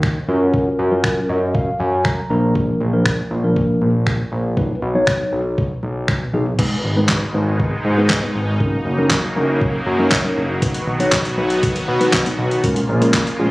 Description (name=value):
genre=dance-pop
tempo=119 BPM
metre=4/4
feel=straight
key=unclear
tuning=A4 = 440 Hz
part: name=fat analog bass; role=bass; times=0.0-13.5 s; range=Gb1 to B2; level=-20 LUFS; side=equal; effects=sidechain pumping
part: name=boom bap sampler-style drum kit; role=drums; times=0.0-13.4 s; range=crash cymbal, finger snaps, handclaps, hi-hat, kick drum, snare drum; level=-19 LUFS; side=equal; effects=none
part: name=mellow tine electric piano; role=accompaniment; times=0.3-13.5 s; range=F3 to Bb5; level=-20 LUFS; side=equal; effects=sidechain pumping
part: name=filtered supersaw swell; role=sustained chords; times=6.6-13.5 s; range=Cb3 to F#4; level=-23 LUFS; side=equal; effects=sidechain pumping
room=light reverb, digital ambience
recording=recorded on a phone in the room, studio reverb, compression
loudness=-16 LUFS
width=side -20 dB against mid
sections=0.0-6.6 A section; 6.6-13.5 B section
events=tine electric piano fill 1.0-2.6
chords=0.3 Gbmaj7; 2.3 Bb; 4.6 B; 6.6 Abm; 8.6 Gb6; 10.6 B; 12.6 Bbm7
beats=0.03 | 0.54 1.04 1.54 2.05 | 2.55 3.06 3.56 4.07 | 4.57 5.08 5.58 6.08 | 6.59 7.09 7.60 8.10 | 8.60 9.11 9.61 10.12 | 10.62 11.12 11.63 12.13 | 12.64 13.14